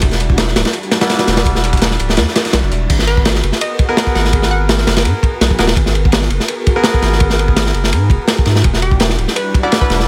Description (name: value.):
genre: drum and bass, jungle.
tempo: 167 BPM.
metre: 4/4.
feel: straight.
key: G# minor.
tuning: A4 = 435 Hz.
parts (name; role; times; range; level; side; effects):
soft string machine; sustained chords; 0.0-10.1 s; G3 to A#4; -27 LUFS; equal; none.
saturated sub bass; bass; 0.0-10.1 s; D1 to G#2; -18 LUFS; equal; none.
crunchy breakbeat drum kit; drums; 0.0-10.1 s; crash cymbal, kick drum, ride cymbal, snare drum; -16 LUFS; equal; none.
dusty soul sampler-style drum kit; drums; 0.0-2.8 s; hi-hat, snare drum; -28 LUFS; equal; none.
bright concert grand piano; stabs; 1.0-10.1 s; G3 to A#4; -23 LUFS; equal; dub echo.
hollow square pluck; melody; 3.1-4.9, 8.8-10.0 s; G4 to F#5; -25 LUFS; equal; chorus, dub echo.
room: small room ambience.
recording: none.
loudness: -14 LUFS.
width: mono.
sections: 0.0-2.9 A section; 2.9-10.1 A section.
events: drop 0.0-2.9, 2.9-10.1.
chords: 0.0 Em9; 2.9 G#m9; 8.6 Em9.